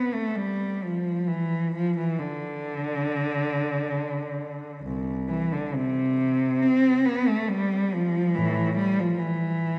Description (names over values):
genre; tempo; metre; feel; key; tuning
classical, free, expressive piece for unaccompanied cello; 64-71 BPM; 4/4; rubato; unclear; A4 = 440 Hz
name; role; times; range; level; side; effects
rich cello; solo; 0.0-9.8 s; C2 to C4; -26 LUFS; equal; none
room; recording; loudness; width
wet church reverb, RT60 2.9 s; dark, warm production; -26 LUFS; mono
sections
0.0-9.8 A section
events
none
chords
none